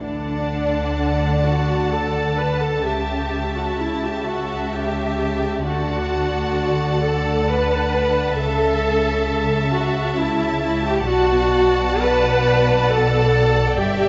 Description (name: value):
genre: classical, slow romantic movement for string orchestra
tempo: 65 BPM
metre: 3/4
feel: uneven beats, rubato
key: D major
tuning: A4 = 442 Hz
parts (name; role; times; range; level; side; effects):
- rich studio violin section; melody; 0.0-14.1 s; G5 to A5; -30 LUFS; equal; none
- rich studio violin section; second line; 0.0-14.1 s; D5 to F#5; -30 LUFS; equal; none
- rich studio viola section; accompaniment; 0.0-14.1 s; D4 to B4; -23 LUFS; equal; none
- rich studio cello section; bass; 0.0-14.1 s; G2 to D3; -27 LUFS; equal; none
- rich studio double bass section; bass; 0.0-14.1 s; G1 to D2; -27 LUFS; equal; none
room: moderate concert hall reverb, RT60 2.3 s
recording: nothing above 7.5 kHz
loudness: -20 LUFS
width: mono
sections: 0.0-14.1 A section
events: none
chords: 0.0 D; 2.8 A7/C#; 5.7 D; 8.4 A/C#; 11.0 Bm7